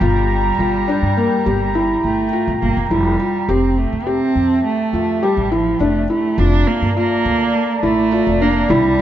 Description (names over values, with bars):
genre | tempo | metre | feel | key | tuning
contemporary instrumental, chamber music in an uneven meter | 104 BPM | 5/4 | straight | unclear | A4 = 440 Hz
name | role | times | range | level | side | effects
warm cello | melody | 0.0-9.0 s | F3 to D4 | -19 LUFS | right 4 dB | none
deep dark ambient pad | sustained chords | 0.0-9.0 s | E4 to Bb5 | -24 LUFS | left 1 dB | chorus, built-in reverb
felt-muted upright piano | arpeggios | 0.0-9.0 s | Bb3 to G4 | -19 LUFS | left 2 dB | none
upright bass | bass | 0.0-8.9 s | F1 to G2 | -20 LUFS | equal | none
room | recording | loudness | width
moderate recital hall reverb, RT60 1.6 s | nothing above 7.5 kHz | -14 LUFS | side -11 dB against mid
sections
0.0-2.9 A section; 2.9-9.0 B section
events
none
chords
0.0 Gm7; 2.9 Fmaj9; 5.8 Bbmaj7/F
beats
| 0.02 0.59 1.17 1.75 2.33 | 2.91 3.49 4.07 4.65 5.23 | 5.81 6.39 6.96 7.54 8.12 | 8.70